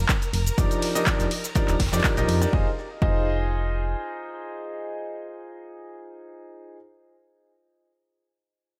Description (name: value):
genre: piano house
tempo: 123 BPM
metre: 4/4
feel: swing 53% on 16ths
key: F dorian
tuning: A4 = 439 Hz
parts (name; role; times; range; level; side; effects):
- string machine, violins; sustained chords; 0.0-2.5 s; Bb4 to Bb5; -40 LUFS; equal; none
- solid FM bass; bass; 0.0-4.0 s; Eb1 to F2; -28 LUFS; equal; sidechain pumping
- crisp fusion drum kit; drums; 0.1-2.4 s; hi-hat, snare drum; -40 LUFS; equal; none
- electronic kick drum; drums; 0.1-3.2 s; none; -27 LUFS; equal; none
- punchy analog drum machine; drums; 0.1-2.5 s; handclaps, hi-hat, ride cymbal, shaker; -30 LUFS; equal; none
- bright grand piano; riff; 0.6-6.8 s; F3 to Eb5; -31 LUFS; equal; sidechain pumping, analog delay
room: studio reverb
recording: echo-heavy mix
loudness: -25 LUFS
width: mono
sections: 0.0-2.5 A section; 2.5-6.4 B section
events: drop 0.0-2.5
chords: 0.3 Ebmaj7/F; 2.5 Fm7